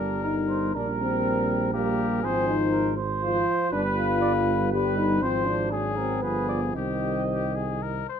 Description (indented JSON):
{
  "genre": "classical, brass quintet",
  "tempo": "120 BPM",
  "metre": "3/4",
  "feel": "rubato",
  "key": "unclear",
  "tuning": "A4 = 439 Hz",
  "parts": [
    { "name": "warm trumpet", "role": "melody", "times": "0.0-8.2 s", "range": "G4 to C5", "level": "-31 LUFS", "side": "left 8 dB", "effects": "none" },
    { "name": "warm flugelhorn", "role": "second line", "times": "0.0-8.0 s", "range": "G4 to Eb5", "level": "-31 LUFS", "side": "right 7 dB", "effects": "none" },
    { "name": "mellow French horn", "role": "accompaniment", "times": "0.0-7.8 s", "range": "Bb3 to G4", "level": "-28 LUFS", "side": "left 4 dB", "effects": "none" },
    { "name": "mellow euphonium", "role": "accompaniment", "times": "0.0-8.1 s", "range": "Eb3 to G3", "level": "-32 LUFS", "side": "right 4 dB", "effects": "none" },
    { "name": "mellow bass trombone", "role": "bass", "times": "0.0-8.0 s", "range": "G1 to C2", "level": "-30 LUFS", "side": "right 3 dB", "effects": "none" }
  ],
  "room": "moderate large studio reverb, RT60 0.9 s",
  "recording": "minimal, uncompressed stereo recording",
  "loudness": "-23 LUFS",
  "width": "side -8 dB against mid",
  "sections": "0.0-8.2 A section",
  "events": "none",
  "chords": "0.0 Gm; 0.7 Gm/Bb; 2.2 Fm/Ab; 3.7 G; 5.2 Fm/Ab; 5.7 Ab7; 6.2 G7b9; 6.8 Cm"
}